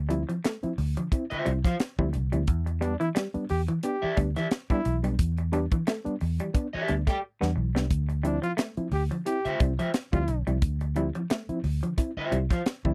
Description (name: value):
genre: funk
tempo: 88 BPM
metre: 4/4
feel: swing 56% on 16ths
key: D dorian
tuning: A4 = 439 Hz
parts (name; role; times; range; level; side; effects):
- vintage muted fingered electric bass; bass; 0.0-12.9 s; B1 to E2; -30 LUFS; equal; none
- semi-hollow electric guitar; riff; 0.1-12.9 s; E3 to B3; -35 LUFS; equal; subtle chorus
- reed electric piano; stabs; 0.1-12.9 s; D3 to E4; -34 LUFS; equal; overdrive, fast tremolo
- tight funk drum kit; drums; 0.1-12.9 s; hi-hat, kick drum, snare drum; -29 LUFS; equal; none
- electric guitar at the edge of break-up; accompaniment; 1.3-12.6 s; F4 to G5; -32 LUFS; equal; tremolo
- warm trombone; second line; 2.8-10.4 s; D4 to G4; -32 LUFS; equal; none
room: little or no reverb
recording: dry, close 1970s-style studio recording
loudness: -28 LUFS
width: mono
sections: 0.0-12.9 A section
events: drum fill 7.2-7.9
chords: 0.0 Dm9; 2.5 Em7; 7.9 Dm9